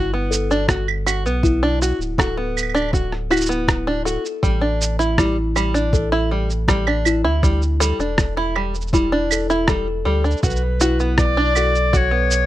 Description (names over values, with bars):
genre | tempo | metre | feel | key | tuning
folktronica | 80 BPM | 4/4 | straight | unclear | A4 = 440 Hz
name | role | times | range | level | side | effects
open-back banjo | arpeggios | 0.0-12.5 s | G3 to F#4 | -22 LUFS | right 1 dB | plate reverb, digital delay
warm sub bass | bass | 0.0-12.5 s | D1 to D2 | -22 LUFS | equal | tube saturation
music box | second line | 0.3-11.9 s | E4 to A4 | -25 LUFS | left 3 dB | vintage 12-bit sampler grit, plate reverb, ping-pong delay
electronic shaker, rim click and claves | drums | 0.3-12.5 s | none | -22 LUFS | right 3 dB | none
electronic kick drum | drums | 0.7-12.1 s | none | -20 LUFS | equal | none
warm clarinet | melody | 10.4-12.5 s | B4 to D5 | -20 LUFS | left 2 dB | plate reverb
room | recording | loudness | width
light reverb | none | -16 LUFS | side -14 dB against mid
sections
0.0-12.5 A section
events
none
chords
0.0 Gmaj7; 4.4 A7sus4; 10.4 Bm